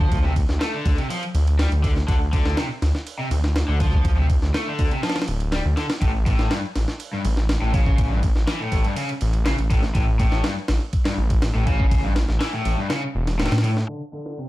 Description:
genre	breakbeat, breaks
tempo	122 BPM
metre	4/4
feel	straight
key	D minor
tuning	A4 = 442 Hz
part	cranked stack guitar	riff	0.0-14.5 s	G2 to A3	-27 LUFS	left 1 dB	overdrive, tube saturation, low-pass filter, ping-pong delay
part	detuned saw bass	bass	0.0-13.8 s	D1 to A2	-21 LUFS	equal	tube saturation
part	breakbeat sampler-style drum kit	drums	0.0-14.5 s	kick drum, ride cymbal, snare drum	-23 LUFS	equal	high-pass filter on kick, high-pass filter on cymbals, high-pass filter on snare
room	light reverb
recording	dark, warm production, vinyl crackle, low-pass filter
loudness	-19 LUFS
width	side -17 dB against mid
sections	0.0-13.9 A section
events	kick drops out 12.9-13.9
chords	0.0 Dm; 6.0 A; 13.9 D7(no3)

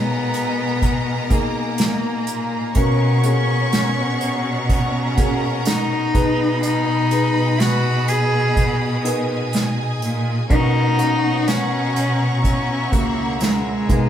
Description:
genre	pop ballad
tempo	62 BPM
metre	4/4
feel	straight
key	unclear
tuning	A4 = 440 Hz
part	warm cello	melody	0.0-14.1 s	G#3 to G#4	-22 LUFS	left 1 dB	none
part	warm symphonic violin section	second line	0.0-14.1 s	D#4 to C#6	-29 LUFS	right 1 dB	none
part	felt-muted upright piano	accompaniment	0.0-14.1 s	B2 to C#5	-26 LUFS	equal	none
part	warm studio string section	sustained chords	0.0-14.1 s	G#4 to D#6	-28 LUFS	equal	none
part	rich studio cello section	bass	0.0-14.1 s	C#2 to B2	-22 LUFS	left 1 dB	none
part	unplugged drum kit	drums	0.3-14.1 s	hi-hat, kick drum, snare drum	-21 LUFS	right 1 dB	none
room	moderate studio reverb, RT60 0.7 s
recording	band playing live in one room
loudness	-17 LUFS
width	side -10 dB against mid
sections	0.0-14.1 A section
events	none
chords	0.0 G#madd9/B; 2.8 F#/B; 6.1 G#madd9/B; 10.5 F#/B

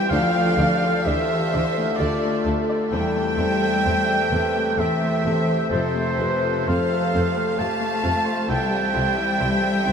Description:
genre	cinematic, emotional film score for orchestra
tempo	65 BPM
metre	3/4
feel	rubato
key	unclear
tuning	A4 = 440 Hz
part	warm studio violin section	melody	0.0-9.9 s	A4 to F5	-33 LUFS	left 2 dB	none
part	bright small flute group	second line	0.0-9.9 s	C5 to A5	-30 LUFS	left 3 dB	none
part	mellow clarinet	second line	0.0-9.9 s	E4 to C5	-31 LUFS	left 3 dB	none
part	warm oboe	second line	0.0-9.9 s	C5 to A5	-25 LUFS	right 5 dB	none
part	warm studio violin section	second line	0.0-9.9 s	C5 to A5	-30 LUFS	left 1 dB	none
part	bright concert grand piano	accompaniment	0.0-9.9 s	C2 to D5	-28 LUFS	left 4 dB	none
part	warm French horn section	sustained chords	0.0-9.9 s	C3 to C5	-28 LUFS	right 1 dB	none
part	warm studio cello section	bass	0.0-9.9 s	C3 to A3	-26 LUFS	left 1 dB	none
part	warm studio viola section	accompaniment	0.1-9.9 s	C4 to A4	-34 LUFS	right 3 dB	none
part	warm studio double bass section	bass	0.1-9.9 s	C2 to F2	-27 LUFS	equal	none
room	wet huge ambient reverb, RT60 7.5 s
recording	in a vast, echoing space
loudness	-19 LUFS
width	side -7 dB against mid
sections	0.0-9.9 A section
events	none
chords	0.1 Dm; 2.9 Am7/E; 5.7 F; 8.5 C

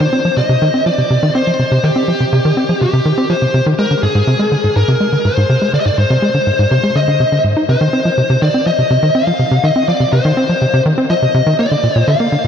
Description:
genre	ambient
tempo	123 BPM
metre	4/4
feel	straight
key	C minor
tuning	A4 = 443 Hz
part	smooth overdriven lead guitar	melody	0.0-12.5 s	G4 to F5	-15 LUFS	left 1 dB	ping-pong delay
part	tight sequencer bass	riff	0.0-12.5 s	Ab2 to Eb4	-13 LUFS	equal	ping-pong delay
room	wet huge ambient reverb, RT60 8.4 s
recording	none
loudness	-11 LUFS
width	side -8 dB against mid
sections	0.0-12.5 A section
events	none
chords	0.0 Cm; 3.8 Ab; 7.7 Cm; 11.6 Bb

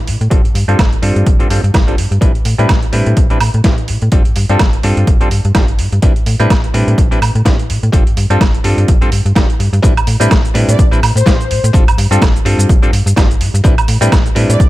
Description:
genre	filtered disco house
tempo	126 BPM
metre	4/4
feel	swing 57% on 16ths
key	A minor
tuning	A4 = 441 Hz
part	slap-like FM bass	bass	0.0-14.7 s	G1 to A2	-14 LUFS	equal	tube saturation, sidechain pumping, low-pass filter
part	dusty soul sampler-style drum kit	drums	0.1-14.7 s	hi-hat, shaker, snare drum, woodblock	-18 LUFS	right 1 dB	overdrive, sidechain pumping on hats, sidechain pumping on perc
part	clav	accompaniment	0.3-14.7 s	G3 to B4	-18 LUFS	equal	phaser, sidechain pumping, low-pass filter
part	electronic kick drum	drums	0.3-14.7 s	none	-12 LUFS	equal	none
part	analog synth brass	melody	10.7-14.7 s	C5 to D5	-20 LUFS	left 2 dB	chorus, sidechain pumping, low-pass filter
room	digital ambience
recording	none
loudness	-9 LUFS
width	side -16 dB against mid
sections	0.0-9.8 A section; 9.8-14.7 B section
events	drop 9.8-14.7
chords	0.3 G7sus4; 2.2 Am11; 4.1 G7sus4; 6.0 Am11; 7.9 G7sus4; 9.8 Am11; 11.7 G7sus4; 13.6 Am11

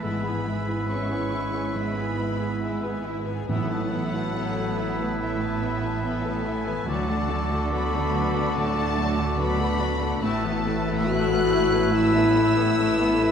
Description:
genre	cinematic, emotional film score for orchestra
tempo	71 BPM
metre	4/4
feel	rubato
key	unclear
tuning	A4 = 440 Hz
part	rich symphonic violin section	melody	0.0-13.3 s	E5 to F#6	-34 LUFS	left 2 dB	none
part	bright oboe	second line	0.0-13.3 s	A4 to B4	-36 LUFS	right 2 dB	none
part	mellow clarinet	second line	0.0-13.3 s	E4 to F#4	-34 LUFS	left 1 dB	none
part	mellow hollow silver concert flute	second line	0.0-13.3 s	D6 to E6	-35 LUFS	left 2 dB	none
part	warm symphonic violin section	second line	0.0-13.3 s	F#4 to A5	-37 LUFS	left 4 dB	none
part	rich symphonic viola section	accompaniment	0.0-13.3 s	F#3 to G#4	-33 LUFS	equal	none
part	warm grand piano	accompaniment	0.0-13.3 s	D2 to B4	-31 LUFS	left 1 dB	none
part	mellow French horn section	sustained chords	0.0-13.3 s	E3 to F#4	-28 LUFS	left 3 dB	none
part	concert harp	arpeggios	0.0-13.3 s	G#2 to B5	-34 LUFS	left 5 dB	none
part	clear studio double bass section	bass	0.0-13.3 s	G#1 to D2	-31 LUFS	right 4 dB	none
part	rich symphonic cello section	bass	0.0-13.3 s	G#2 to D3	-32 LUFS	right 3 dB	none
part	timpani	percussion	3.5-4.7 s	A2	-31 LUFS	right 4 dB	none
room	wet scoring stage reverb, RT60 1.8 s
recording	dark, warm production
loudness	-22 LUFS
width	side -7 dB against mid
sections	0.0-13.3 A section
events	none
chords	0.0 E/G#; 3.5 Asus2; 6.9 D; 10.2 Asus2

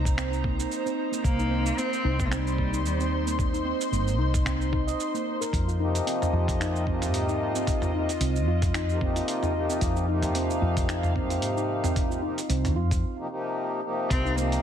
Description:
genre	organic downtempo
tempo	112 BPM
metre	4/4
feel	swing 55% on 16ths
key	unclear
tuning	A4 = 437 Hz
part	airy breathy pad	sustained chords	0.0-14.6 s	Eb4 to C6	-34 LUFS	equal	chorus, sidechain pumping
part	handpan	arpeggios	0.0-14.5 s	Bb3 to Eb5	-32 LUFS	right 2 dB	low-pass filter, tape echo
part	woody fretless electric bass	bass	0.0-14.6 s	G1 to Ab2	-28 LUFS	equal	none
part	dusty soul sampler-style drum kit	drums	0.1-14.6 s	cabasa, finger snaps, hi-hat, toms	-32 LUFS	right 1 dB	small room ambience
part	electronic kick drum	drums	0.1-14.2 s	none	-29 LUFS	equal	small room ambience
part	rich cello	melody	1.2-3.2, 14.1-14.6 s	G3 to C4	-30 LUFS	left 2 dB	tape echo
part	pedal harmonium	accompaniment	5.8-14.6 s	C3 to G4	-30 LUFS	left 2 dB	sidechain pumping, tape echo
room	light reverb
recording	none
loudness	-24 LUFS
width	side -9 dB against mid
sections	0.0-14.1 A section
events	break 13.0-14.1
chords	0.0 Cm7; 5.5 Fm7; 14.1 Cm7

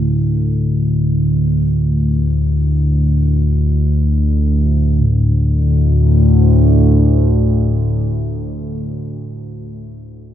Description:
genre	ambient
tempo	free time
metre	none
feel	none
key	unclear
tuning	A4 = 440 Hz
part	analog drone	solo	0.0-8.6 s	D2 to A2	-13 LUFS	equal	chorus, diffuse ambient delay
room	wet cathedral reverb, RT60 6.3 s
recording	dark, warm production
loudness	-12 LUFS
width	side -11 dB against mid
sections	0.0-5.0 A section; 5.0-9.8 B section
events	none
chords	0.0 D5

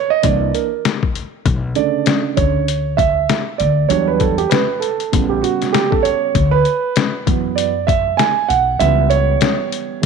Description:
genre	hip hop, jazz-hop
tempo	98 BPM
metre	4/4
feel	swing 60% on 16ths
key	unclear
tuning	A4 = 441 Hz
part	dark grand piano	accompaniment	0.0-10.1 s	C#3 to G#5	-16 LUFS	right 11 dB	none
part	upright bass	bass	0.2-9.3 s	A1 to F#2	-19 LUFS	left 2 dB	none
part	trip hop sampler-style drum kit	drums	0.2-10.1 s	hi-hat, kick drum, snare drum	-18 LUFS	left 6 dB	none
room	light reverb, digital ambience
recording	1960s-style stereo with parts hard left and right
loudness	-14 LUFS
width	side -5 dB against mid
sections	0.0-10.1 A section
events	grand piano solo 0.0-10.1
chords	0.2 C9; 1.5 Bm9 (rootless); 3.9 Em7; 5.1 A7; 6.4 D6; 8.8 C#m7b5

